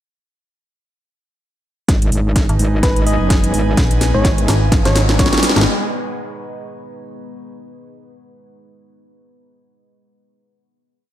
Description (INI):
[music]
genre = bass house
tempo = 127 BPM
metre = 4/4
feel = swing 57% on 16ths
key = G# minor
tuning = A4 = 440 Hz
[part]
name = deep dark ambient pad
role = sustained chords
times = 2.8-5.6 s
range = G#3 to B4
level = -28 LUFS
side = left 2 dB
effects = chorus, built-in reverb, sidechain pumping
[part]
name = metallic wobble bass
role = bass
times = 1.9-4.5 s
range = F#1 to G#1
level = -17 LUFS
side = equal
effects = chorus, tube saturation, sidechain pumping
[part]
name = electronic kick drum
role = drums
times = 1.9-5.3 s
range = none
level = -16 LUFS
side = equal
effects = overdrive
[part]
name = house drum kit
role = drums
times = 1.9-5.7 s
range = hi-hat, snare drum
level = -19 LUFS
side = equal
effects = overdrive
[part]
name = riser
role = sound effects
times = 3.6-5.7 s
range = none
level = -26 LUFS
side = equal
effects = none
[part]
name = airy breathy pad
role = texture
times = 1.9-5.7 s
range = D#4 to G#5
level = -26 LUFS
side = right 2 dB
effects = chorus, sidechain pumping
[part]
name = metallic FM bass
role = bass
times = 2.5-5.6 s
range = G#1 to A#1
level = -17 LUFS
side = equal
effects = overdrive, sidechain pumping
[part]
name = soft struck synth lead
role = melody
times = 2.8-5.4 s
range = B4 to D#5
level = -24 LUFS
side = equal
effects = chorus, dub echo
[sound]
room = light reverb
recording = none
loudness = -13 LUFS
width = side -12 dB against mid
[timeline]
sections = 1.9-5.7 build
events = build-up 1.9-5.7; drum fill 1.9-5.7; riser 3.6-5.7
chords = 1.9 G#m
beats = | 1.89 2.36 2.83 3.30 | 3.78 4.25 4.72 5.19